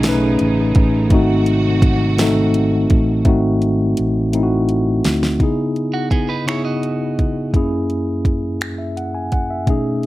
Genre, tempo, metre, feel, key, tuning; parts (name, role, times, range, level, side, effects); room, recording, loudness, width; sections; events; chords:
slow six-eight R&B; 56 BPM (dotted quarters); 6/8; straight; C# minor; A4 = 440 Hz
mellow tine electric piano; accompaniment; 0.0-10.1 s; F#2 to G#5; -17 LUFS; left 1 dB; medium stereo tremolo, plate reverb
warm studio string section; sustained chords; 0.0-3.2 s; B#2 to G#4; -26 LUFS; right 4 dB; plate reverb
fingered electric bass; bass; 0.0-5.4 s; G#1 to D2; -19 LUFS; equal
smooth R&B drum kit; drums; 0.0-10.1 s; finger snaps, hi-hat, kick drum, snare drum; -17 LUFS; equal
clean electric guitar; second line; 5.9-7.5 s; B3 to D#5; -26 LUFS; right 6 dB; spring reverb, plate reverb
light reverb; -15 LUFS; side -17 dB against mid
0.0-3.2 A section; 3.2-5.4 B section; 5.4-10.1 C section
drum fill 4.3-5.4
0.0 B13; 1.1 G#7b9; 5.4 C#m9; 7.5 F#9